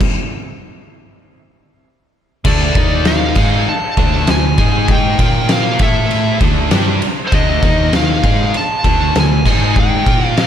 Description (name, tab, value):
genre	quiet-loud alternative rock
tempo	98 BPM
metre	4/4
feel	straight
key	unclear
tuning	A4 = 439 Hz
part	oversized low-tuned drum kit	drums	0.0-10.5 s	crash cymbal, kick drum, ride cymbal, snare drum	-15 LUFS	equal	none
part	distorted electric guitar	riff	2.4-10.5 s	D3 to Bb4	-22 LUFS	left 2 dB	overdrive, slapback echo
part	fuzz lead guitar	melody	2.5-10.5 s	C5 to A5	-19 LUFS	equal	distortion
part	thick fuzz guitar	riff	2.5-10.5 s	D3 to Bb4	-22 LUFS	left 10 dB	distortion
part	thick fuzz guitar	riff	2.5-10.5 s	D3 to Bb4	-22 LUFS	right 10 dB	distortion, slapback echo
part	hollow-body short-scale fingered electric bass	bass	2.5-10.5 s	D2 to Bb2	-18 LUFS	equal	none
room	light reverb, small room ambience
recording	none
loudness	-11 LUFS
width	side -9 dB against mid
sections	0.0-2.5 A section; 2.5-10.5 B section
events	stop 0.0-2.5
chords	0.0 N.C.; 2.5 D5; 2.8 Eb5; 3.4 D5; 4.6 G#5; 5.2 Bb5; 5.8 A5; 6.4 D5; 7.6 Eb5; 8.2 D5; 9.5 G#5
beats	| 0.02 0.63 1.24 1.85 | 2.46 3.07 3.67 4.28 | 4.89 5.50 6.11 6.72 | 7.33 7.94 8.55 9.15 | 9.76 10.37